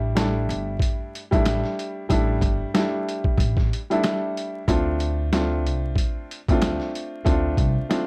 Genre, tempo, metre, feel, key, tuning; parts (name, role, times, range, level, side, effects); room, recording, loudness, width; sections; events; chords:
hip hop, boom-bap hip-hop; 93 BPM; 4/4; swing 56% on 16ths; D minor; A4 = 441 Hz
dark upright piano; accompaniment; 0.0-8.1 s; G3 to F4; -28 LUFS; equal
upright bass; bass; 0.0-7.7 s; G1 to D2; -28 LUFS; equal
boom bap sampler-style drum kit; drums; 0.2-8.1 s; hi-hat, kick drum, snare drum; -26 LUFS; equal
finger snap; percussion; 0.2-8.1 s; -42 LUFS; equal
little or no reverb; dry, gritty hardware recording, vinyl crackle; -23 LUFS; mono
0.0-8.1 A section
0.0 A7sus4; 4.7 Dm7